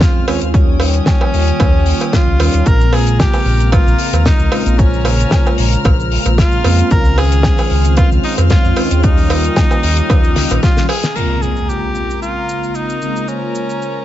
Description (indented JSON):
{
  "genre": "nu-disco, nu disco",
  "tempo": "113 BPM",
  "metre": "4/4",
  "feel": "swing 53% on 16ths",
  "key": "Bb dorian",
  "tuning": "A4 = 440 Hz",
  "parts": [
    { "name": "clear tenor saxophone", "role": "melody", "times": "0.0-14.0 s", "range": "Db4 to Bb4", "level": "-21 LUFS", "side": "equal", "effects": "ping-pong delay" },
    { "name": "mellow synth brass", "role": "accompaniment", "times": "0.0-14.0 s", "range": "Db3 to C5", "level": "-20 LUFS", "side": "equal", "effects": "chorus" },
    { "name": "warm studio string section", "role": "sustained chords", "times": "0.0-14.0 s", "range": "G4 to F6", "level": "-27 LUFS", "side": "left 3 dB", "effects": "sidechain pumping" },
    { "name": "chorused synth bass", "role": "bass", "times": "0.0-10.6 s", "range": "Bb1 to F2", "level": "-14 LUFS", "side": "equal", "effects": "none" },
    { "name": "damped 70s drum kit", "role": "drums", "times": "0.0-13.9 s", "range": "cabasa, crash cymbal, hi-hat, snare drum, woodblock", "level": "-21 LUFS", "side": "left 2 dB", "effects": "none" },
    { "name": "electronic kick drum", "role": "drums", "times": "0.0-10.7 s", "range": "none", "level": "-13 LUFS", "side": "equal", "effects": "overdrive" },
    { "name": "cowbell", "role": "percussion", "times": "0.3-11.0 s", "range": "none", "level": "-23 LUFS", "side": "right 4 dB", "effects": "none" },
    { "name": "impact", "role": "sound effects", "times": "11.2-13.3 s", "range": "none", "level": "-22 LUFS", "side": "equal", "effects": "none" }
  ],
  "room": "studio ambience",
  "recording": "nothing above 7.8 kHz",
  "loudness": "-11 LUFS",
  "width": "side -13 dB against mid",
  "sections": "0.0-11.2 A section; 11.2-14.0 B section",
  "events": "drum fill 10.6-11.2; impact 11.2-13.3",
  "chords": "0.0 Dbmaj7; 0.5 Eb7; 2.7 Bbm7; 6.9 Dbmaj7; 9.0 Eb7; 11.2 Bbm7"
}